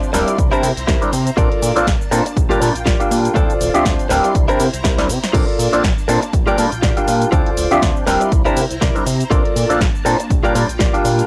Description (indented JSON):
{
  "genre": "filtered disco house",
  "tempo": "121 BPM",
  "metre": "4/4",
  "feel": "swing 56% on 16ths",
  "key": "G dorian",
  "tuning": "A4 = 440 Hz",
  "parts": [
    { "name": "mellow clav", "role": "accompaniment", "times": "0.0-11.3 s", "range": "F3 to A5", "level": "-20 LUFS", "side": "equal", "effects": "phaser, vintage 12-bit sampler grit, sidechain pumping" },
    { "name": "phased string machine", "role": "sustained chords", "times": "0.0-11.3 s", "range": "Bb3 to C6", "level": "-32 LUFS", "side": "equal", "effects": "ensemble chorus, phaser, sidechain pumping" },
    { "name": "punchy analog drum machine", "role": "drums", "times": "0.0-11.3 s", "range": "crash cymbal, hi-hat, shaker, snare drum", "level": "-27 LUFS", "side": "equal", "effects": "sidechain pumping on perc, sidechain pumping on hats, sidechain pumping on cymbals" },
    { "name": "direct-recorded clean electric guitar", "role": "riff", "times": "0.1-11.1 s", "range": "E4 to D5", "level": "-22 LUFS", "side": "equal", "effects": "sidechain pumping" },
    { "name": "fat analog bass", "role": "bass", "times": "0.1-11.2 s", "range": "D1 to C3", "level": "-24 LUFS", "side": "equal", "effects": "sidechain pumping" },
    { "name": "electronic kick drum", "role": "drums", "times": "0.4-10.9 s", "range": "none", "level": "-20 LUFS", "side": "equal", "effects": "none" }
  ],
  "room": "light reverb",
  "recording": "home recording on cassette",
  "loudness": "-16 LUFS",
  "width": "mono",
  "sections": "0.0-11.3 A section",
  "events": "drum fill 5.0-5.3",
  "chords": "0.4 C7; 1.4 Bbmaj7; 2.4 Gm7/Bb; 3.4 Dm7; 4.4 C7; 5.3 Bbmaj7; 6.3 Gm7/Bb; 7.3 Dm7; 8.3 C7; 9.3 Bbmaj7; 10.3 Gm7/Bb"
}